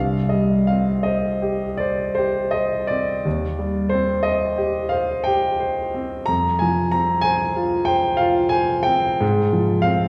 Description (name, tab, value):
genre	classical, romantic nocturne for solo piano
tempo	53-65 BPM (dotted quarters)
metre	9/8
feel	rubato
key	C minor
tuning	A4 = 441 Hz
part	warm concert grand piano	solo	0.0-10.1 s	C2 to Bb5	-20 LUFS	equal	none
room	wet recital hall reverb, RT60 1.4 s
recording	heard from further back in the room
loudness	-21 LUFS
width	mono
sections	0.0-10.1 A section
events	none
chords	0.0 Cm; 3.2 Cm/Eb; 6.3 Fm; 9.2 Fm/Ab